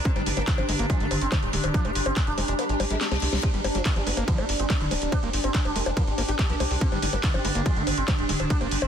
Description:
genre	psychedelic trance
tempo	142 BPM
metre	4/4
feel	straight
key	G phrygian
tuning	A4 = 440 Hz
part	overtone-sweeping drone	sustained chords	0.0-8.9 s	D4	-32 LUFS	equal	chorus, built-in reverb, vintage 12-bit sampler grit, sidechain pumping
part	granular cloud pad	texture	0.0-8.9 s	D4 to Bb5	-33 LUFS	right 2 dB	built-in reverb, sidechain pumping
part	sitar	melody	0.1-8.9 s	G2 to D4	-32 LUFS	equal	phaser, sidechain pumping, dub echo
part	electronic kick drum	drums	0.1-8.6 s	none	-26 LUFS	equal	none
part	techno drum kit	drums	0.1-8.9 s	bongos, handclaps, hi-hat, ride cymbal, snare drum	-30 LUFS	left 2 dB	none
part	overdriven acid bass	riff	0.2-8.7 s	F3 to G4	-35 LUFS	moving between left 8 dB and right 9 dB	distortion, auto-pan, cassette tape, sidechain pumping, dub echo
part	tight sequencer bass	bass	0.2-8.9 s	D1 to C2	-29 LUFS	equal	none
part	reverse cymbal	sound effects	2.7-3.4 s	none	-37 LUFS	left 6 dB	none
part	resonant blip pluck	second line	4.1-8.8 s	G3 to C4	-44 LUFS	right 4 dB	none
room	little or no reverb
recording	dense, heavily limited modern master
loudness	-22 LUFS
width	side -8 dB against mid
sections	0.0-8.9 A section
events	kick drops out 2.6-3.4; reverse cymbal 2.7-3.4; drum fill 3.0-3.4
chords	0.0 G5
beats	| 0.05 0.47 0.90 1.32 | 1.74 2.17 2.59 3.01 | 3.43 3.85 4.28 4.70 | 5.12 5.55 5.97 6.39 | 6.81 7.24 7.66 8.08 | 8.50

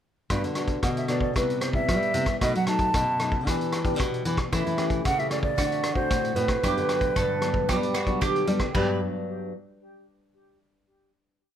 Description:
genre	samba and choro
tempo	114 BPM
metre	4/4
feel	straight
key	G major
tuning	A4 = 441 Hz
part	nylon-string guitar	accompaniment	0.3-9.5 s	F#2 to G4	-30 LUFS	left 3 dB	none
part	nylon-string guitar	bass	0.3-9.0 s	G2 to G3	-29 LUFS	equal	none
part	vintage drum kit	drums	0.3-8.9 s	crash cymbal, hi-hat, kick drum, rim click	-29 LUFS	equal	none
part	mellow hollow jazz flute	melody	0.8-9.0 s	G4 to A5	-28 LUFS	right 2 dB	plate reverb, tape echo
part	mandolin	second line	4.5-9.0 s	E4 to B4	-31 LUFS	right 4 dB	none
room	light reverb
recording	none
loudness	-23 LUFS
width	side -9 dB against mid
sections	0.3-8.8 A section; 8.8-10.9 final chord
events	none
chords	0.3 Gmaj7; 1.4 Cmaj7; 2.4 B7; 3.5 Em7; 4.5 A7/E; 5.6 D7; 6.6 Gmaj7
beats	| 0.30 0.83 1.36 1.89 | 2.41 2.94 3.47 4.00 | 4.53 5.05 5.58 6.11 | 6.64 7.17 7.70 8.22 | 8.75 9.28

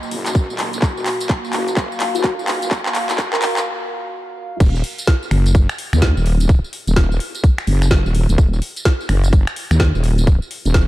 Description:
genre	bass house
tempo	127 BPM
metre	4/4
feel	swing 62% on 16ths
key	Eb minor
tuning	A4 = 440 Hz
part	dark analog pad	sustained chords	0.0-10.9 s	Bb3 to F5	-26 LUFS	left 1 dB	chorus, phaser, sidechain pumping
part	garage drum kit	drums	0.0-10.9 s	crash cymbal, finger snaps, handclaps, hi-hat, snare drum, tambourine	-23 LUFS	equal	none
part	wobble bass	bass	0.1-10.9 s	Eb1 to Eb2	-17 LUFS	equal	chorus, tube saturation, sidechain pumping, high-pass filter
part	electronic kick drum	drums	0.3-10.9 s	none	-14 LUFS	equal	none
part	bell-like FM electric piano	melody	2.1-3.7 s	Gb4 to Bb4	-26 LUFS	equal	chorus, phaser, vintage 12-bit sampler grit, tape echo
room	light reverb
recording	dark, warm production, high-pass filter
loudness	-15 LUFS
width	side -16 dB against mid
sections	0.0-4.6 A section; 4.6-10.9 B section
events	build-up 0.0-4.6; drum fill 0.0-3.7; break 3.7-4.6; drop 4.6-10.9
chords	0.0 Ebm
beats	0.35 | 0.82 1.30 1.77 2.24 | 2.71 3.19 3.66 4.13 | 4.60 5.08 5.55 6.02 | 6.49 6.96 7.44 7.91 | 8.38 8.86 9.33 9.80 | 10.27 10.74

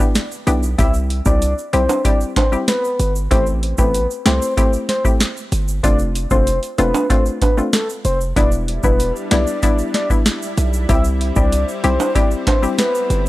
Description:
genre	dancehall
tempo	95 BPM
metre	4/4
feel	straight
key	unclear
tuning	A4 = 442 Hz
part	hollow square pluck	accompaniment	0.0-12.8 s	G3 to G4	-22 LUFS	left 3 dB	chorus
part	tube shaker and timbales	percussion	0.0-13.3 s	none	-26 LUFS	right 5 dB	none
part	impact	sound effects	0.0-0.8 s	none	-54 LUFS	equal	none
part	booming analog drum machine	drums	0.2-13.2 s	hi-hat, kick drum, snare drum	-17 LUFS	equal	none
part	hard-hitting 808-style bass	bass	0.5-13.3 s	E1 to C2	-19 LUFS	equal	none
part	soft octave-layered synth lead	melody	0.8-13.2 s	A4 to E5	-21 LUFS	left 1 dB	chorus, analog delay
part	lush unison pad	sustained chords	8.4-13.3 s	G3 to E4	-28 LUFS	left 1 dB	chorus, sidechain pumping
room	little or no reverb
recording	dry, gritty hardware recording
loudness	-15 LUFS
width	side -17 dB against mid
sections	0.0-13.3 A section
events	impact 0.0-0.8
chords	0.0 Em7; 0.8 C; 3.3 Am7; 5.8 F6; 8.4 Em7; 10.9 C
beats	0.15 | 0.79 1.42 2.05 2.68 | 3.31 3.94 4.58 5.21 | 5.84 6.47 7.10 7.73 | 8.37 9.00 9.63 10.26 | 10.89 11.52 12.15 12.79

